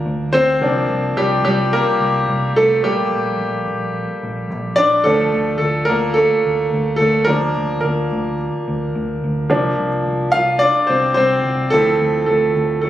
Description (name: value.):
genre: piano-driven pop.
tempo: 108 BPM.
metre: 4/4.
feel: straight.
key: unclear.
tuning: A4 = 440 Hz.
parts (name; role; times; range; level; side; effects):
clear grand piano; accompaniment; 0.0-12.9 s; F3 to F5; -16 LUFS; equal; none.
vintage muted fingered electric bass; bass; 0.1-12.9 s; Bb1 to D2; -23 LUFS; equal; none.
room: light reverb, small room ambience.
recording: recorded on a phone in the room, club reverb.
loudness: -15 LUFS.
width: side -12 dB against mid.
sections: 0.0-12.9 A section.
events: grand piano solo 0.0-12.9.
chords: 0.0 Bb/D; 0.6 C7sus4; 2.8 Gmadd9/Bb; 5.1 Dm; 7.3 Bb/D; 9.5 C7sus4; 11.7 Dm7.